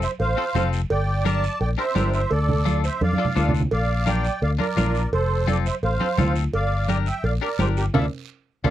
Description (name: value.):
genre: latin, cumbia.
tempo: 170 BPM.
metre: 4/4.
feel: straight.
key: unclear.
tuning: A4 = 438 Hz.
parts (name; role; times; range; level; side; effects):
musette accordion; melody; 0.0-8.7 s; G4 to A5; -26 LUFS; right 3 dB; none.
clean electric guitar; accompaniment; 0.0-8.7 s; C4 to Bb4; -28 LUFS; left 12 dB; none.
fingered electric bass; bass; 0.0-8.7 s; F1 to F2; -23 LUFS; left 1 dB; none.
guiro; percussion; 0.0-8.7 s; none; -41 LUFS; right 13 dB; none.
cowbell and timbales; percussion; 0.2-8.7 s; none; -29 LUFS; right 3 dB; none.
congas; percussion; 0.6-8.7 s; none; -26 LUFS; right 3 dB; none.
room: light reverb.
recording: dry, close 1970s-style studio recording.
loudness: -20 LUFS.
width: side -12 dB against mid.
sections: 0.0-8.7 A section.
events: drum fill 3.0-3.7, 7.9-8.7; band accent 7.9-8.7.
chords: 0.0 F; 0.9 Gm; 2.3 Dm; 3.7 Bb; 5.1 F; 6.5 Gm; 7.9 Dmadd9.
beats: 0.20 0.55 | 0.90 1.25 1.61 1.96 | 2.31 2.66 3.02 3.37 | 3.72 4.07 4.42 4.78 | 5.13 5.48 5.83 6.18 | 6.54 6.89 7.24 7.59 | 7.94 8.29 8.65.